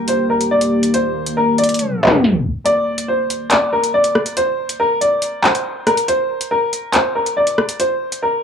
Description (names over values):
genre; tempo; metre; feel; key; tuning
hip hop, drill; 140 BPM; 4/4; half-time; unclear; A4 = 439 Hz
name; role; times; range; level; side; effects
bright upright piano; melody; 0.0-8.4 s; Bb4 to D5; -17 LUFS; equal; low-pass filter
deep dark ambient pad; sustained chords; 0.0-2.6 s; Eb3 to G4; -21 LUFS; left 1 dB; chorus, built-in reverb, cassette tape
drill drum kit; drums; 0.1-8.2 s; handclaps, hi-hat, rim click; -18 LUFS; equal; cassette tape
room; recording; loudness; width
moderate spring reverb, RT60 1.8 s; home recording on cassette, tape stop, small room ambience; -14 LUFS; side -7 dB against mid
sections
0.0-2.7 A section; 2.7-8.4 B section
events
kick muted 0.9-2.7, 2.7-8.4; tape stop 1.8-2.7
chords
0.0 Eb; 2.7 N.C.